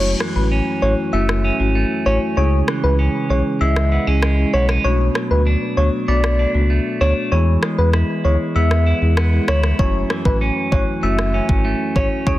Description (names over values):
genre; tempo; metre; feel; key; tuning
dancehall; 97 BPM; 4/4; straight; F# minor; A4 = 437 Hz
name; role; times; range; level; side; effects
soft struck synth lead; melody; 0.0-12.4 s; B4 to E5; -23 LUFS; left 1 dB; chorus, digital delay
marimba with soft mallets; accompaniment; 0.0-12.4 s; G#3 to G#4; -23 LUFS; left 1 dB; none
clean electric guitar; arpeggios; 0.0-12.4 s; F#2 to E4; -23 LUFS; right 2 dB; digital delay
sub bass with octave; bass; 0.0-12.4 s; F#1 to E2; -17 LUFS; equal; none
afro-pop drum kit; drums; 0.2-12.4 s; kick drum, rim click; -23 LUFS; equal; soft clipping on snare
room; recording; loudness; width
digital ambience; dense, heavily limited modern master; -15 LUFS; side -15 dB against mid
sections
0.0-12.4 A section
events
break 0.0-9.8; kick muted 8.6-9.8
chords
0.0 F#m7; 2.4 C#m; 4.8 Bm7; 7.3 E; 9.8 F#m7